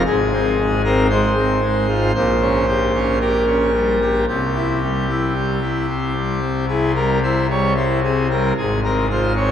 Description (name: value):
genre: classical, chorale-style piece for pipe organ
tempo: 56 BPM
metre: 4/4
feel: rubato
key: F minor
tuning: A4 = 441 Hz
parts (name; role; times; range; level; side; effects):
- pipe organ, full organ; solo; 0.0-9.5 s; Ab1 to Db5; -16 LUFS; left 1 dB; none
room: wet cathedral reverb, RT60 6.1 s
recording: minimal, uncompressed stereo recording, vinyl crackle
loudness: -16 LUFS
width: side -9 dB against mid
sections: 0.0-9.5 A section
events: none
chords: 0.1 Fm/Ab; 2.2 Gdim/Bb; 4.3 C; 8.6 Fm/Ab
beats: | 0.07 1.10 2.16 3.22 | 4.29 5.36 6.43 7.50 | 8.57